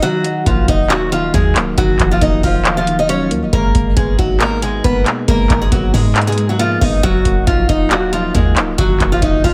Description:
hip hop, trap; 137 BPM; 4/4; half-time; Eb minor; A4 = 440 Hz
picked acoustic archtop guitar; melody; 0.0-9.5 s; F3 to Eb5; -19 LUFS; equal; tape echo
soft electric-piano-like synth keys; accompaniment; 0.0-9.5 s; Cb3 to F4; -23 LUFS; equal; chorus
clean 808-style bass; bass; 0.0-9.5 s; Db1 to Ab2; -21 LUFS; equal
booming analog drum machine; drums; 0.0-9.5 s; handclaps, hi-hat, kick drum; -19 LUFS; equal
digital ambience; echo-heavy mix; -14 LUFS; mono
0.0-9.5 A section
break 0.0-0.5
0.0 Ebmadd9; 3.5 Abmadd9; 7.0 Ebmadd9

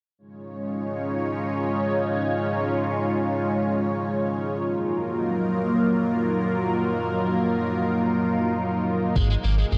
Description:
synthwave; free time; A4 = 439 Hz
lush unison pad; sustained chords; 0.4-9.8 s; F#3 to C#5; -25 LUFS; equal; chorus, phaser, sidechain pumping
biting overdriven guitar; riff; 9.2-9.8 s; G#3 to A#3; -35 LUFS; equal; subtle chorus, analog delay
round analog bass; bass; 9.2-9.8 s; G#1; -23 LUFS; equal; sidechain pumping
electronic kick drum; drums; 9.2-9.3 s; -26 LUFS; equal
wet cathedral reverb, RT60 5.0 s; dreamy mix soaked in reverb; -24 LUFS; mono
0.2-9.8 A section
0.2 C#add9; 4.7 D#madd9; 9.2 G#sus2

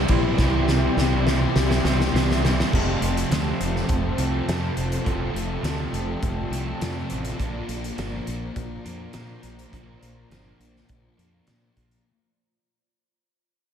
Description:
rock, shoegaze and dream pop; 103 BPM; 4/4; straight; F major; A4 = 441 Hz
ethereal airy pad; sustained chords; 0.0-12.0 s; F4 to C6; -32 LUFS; equal; ensemble chorus, built-in reverb
crunchy overdriven guitar; riff; 0.0-12.1 s; F2 to E4; -30 LUFS; right 7 dB; reverse reverb
raw garage guitar; riff; 0.0-7.4 s; F2 to E4; -31 LUFS; equal; overdrive
thick fuzz guitar; riff; 0.0-12.1 s; F2 to C4; -30 LUFS; left 6 dB; distortion, wide subtle chorus
fingered electric bass; bass; 0.0-12.0 s; F1 to Bb2; -27 LUFS; equal
soft struck synth lead; melody; 0.1-2.1 s; E4; -31 LUFS; right 1 dB; chorus, analog delay
loose indie drum kit; drums; 0.1-12.1 s; crash cymbal, hi-hat, kick drum, ride cymbal, snare drum; -27 LUFS; equal
moderate lush hall reverb, RT60 1.8 s; dreamy mix soaked in reverb; -21 LUFS; side -8 dB against mid
0.0-2.7 A section; 2.7-12.1 B section
drum fill 0.4-2.7; fade-out 2.7-12.1
0.0 Cadd9; 2.7 F; 7.4 Bbadd9

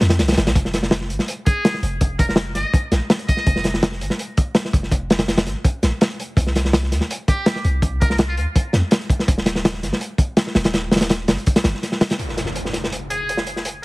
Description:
drum and bass, jungle; 165 BPM; 4/4; straight; A4 = 440 Hz
long sustained 808-style bass; bass; 0.0-11.7 s; Eb1 to F2; -22 LUFS; equal
crunchy breakbeat drum kit; drums; 0.0-13.7 s; hi-hat, kick drum, snare drum; -18 LUFS; equal; high-pass filter on kick, high-pass filter on hats, high-pass filter on snare, high-pass filter on room
trumpet with metal mute; melody; 1.5-3.6, 7.3-8.4, 13.1-13.4 s; F4 to Eb5; -26 LUFS; equal; dub echo
impact; sound effects; 12.2-13.6 s; -29 LUFS; equal
studio reverb; heavily compressed radio sound, multiband compression, vinyl crackle; -17 LUFS; side -23 dB against mid
0.0-12.2 A section; 12.2-13.8 B section
impact 12.2-13.6
0.0 C5; 0.6 N.C.

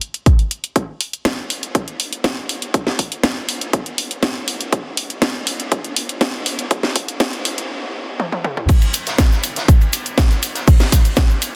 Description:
house; 121 BPM; 4/4; straight
house drum kit; drums; 0.0-11.5 s; crash cymbal, hi-hat, snare drum, toms; -23 LUFS; equal
electronic kick drum; drums; 0.3-11.3 s; -16 LUFS; equal; high-pass filter on kick, high-pass filter on room
loose indie drum kit; drums; 8.7-11.5 s; hi-hat, ride cymbal, snare drum; -29 LUFS; equal; sidechain pumping on cymbals, high-pass filter on cymbals, sidechain pumping on hats, high-pass filter on hats, high-pass filter on snare, high-pass filter on room
tube shaker; percussion; 8.7-11.5 s; -31 LUFS; equal
moderate huge ambient reverb, RT60 8.2 s; dense, heavily limited modern master, high-pass filter; -19 LUFS; mono
0.8-8.7 A section; 8.7-11.6 B section
build-up 0.8-8.7; stop 7.7-8.7; drum fill 8.2-8.7; drop 8.7-11.6

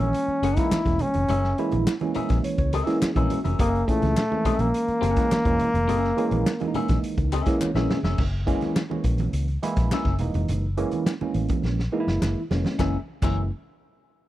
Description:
funk; 104 BPM; 4/4; straight; F# mixolydian; A4 = 440 Hz
mellow trombone; melody; 0.0-7.6 s; A3 to E4; -24 LUFS; left 1 dB
clean electric guitar; accompaniment; 0.0-13.4 s; C#4 to F#5; -30 LUFS; left 5 dB
tine electric piano; stabs; 0.0-13.5 s; A#2 to E5; -27 LUFS; right 2 dB; phaser
vintage muted fingered electric bass; bass; 0.0-13.5 s; E1 to C#2; -26 LUFS; equal
raw garage drum kit; drums; 0.1-13.4 s; crash cymbal, hi-hat, kick drum, snare drum; -27 LUFS; equal
congas; percussion; 0.1-13.5 s; -33 LUFS; right 4 dB
group handclap; percussion; 0.7-13.5 s; -38 LUFS; left 5 dB
little or no reverb; dry, close 1970s-style studio recording; -21 LUFS; side -14 dB against mid
0.0-8.2 A section; 8.2-12.8 B section; 12.8-14.3 C section
tine electric piano fill 1.9-3.6, 7.3-8.2; drum fill 7.6-8.2, 11.6-12.8
0.0 F#9

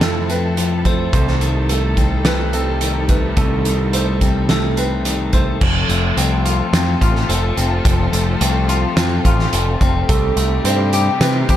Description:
post-rock; 107 BPM; 4/4; straight; F lydian; A4 = 440 Hz
clear symphonic string section; sustained chords; 0.0-11.6 s; C3 to A4; -25 LUFS; equal
clean electric guitar; arpeggios; 0.0-11.6 s; F2 to G4; -21 LUFS; left 4 dB; slapback echo
felt-muted upright piano; arpeggios; 0.0-5.6, 10.1-11.6 s; A4 to C5; -25 LUFS; right 6 dB; slapback echo
growling picked electric bass; bass; 0.0-11.6 s; F1 to C3; -19 LUFS; equal; overdrive
loose indie drum kit; drums; 0.0-11.6 s; crash cymbal, hi-hat, kick drum, snare drum; -19 LUFS; equal
studio reverb; -14 LUFS; side -11 dB against mid
0.0-5.6 A section; 5.6-11.6 B section
0.0 F; 1.1 Cm6; 5.6 F; 10.1 Cm6

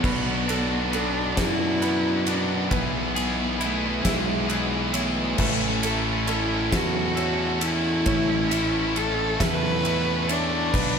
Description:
post-rock; 45 BPM (dotted quarters); 6/8; straight; A major; A4 = 440 Hz
warm cello; melody; 0.0-11.0 s; G#3 to B4; -27 LUFS; equal; digital delay
felt-muted upright piano; arpeggios; 0.0-11.0 s; A4 to E5; -37 LUFS; right 8 dB; slapback echo, digital delay
twelve-string electric guitar; arpeggios; 0.0-11.0 s; A2 to G#4; -35 LUFS; left 2 dB
distorted electric guitar; riff; 0.0-11.0 s; A2 to B4; -29 LUFS; left 13 dB; overdrive
tight distorted guitar; riff; 0.0-11.0 s; A2 to B4; -30 LUFS; right 12 dB; distortion, slapback echo
fuzz fingered electric bass; bass; 0.0-11.0 s; A1 to F#2; -29 LUFS; equal; overdrive
huge arena drum kit; drums; 0.0-10.9 s; crash cymbal, kick drum, ride cymbal, snare drum; -28 LUFS; equal
light reverb; -21 LUFS; side -6 dB against mid
0.0-11.0 A section
0.0 Bm; 2.7 E/B; 5.4 A

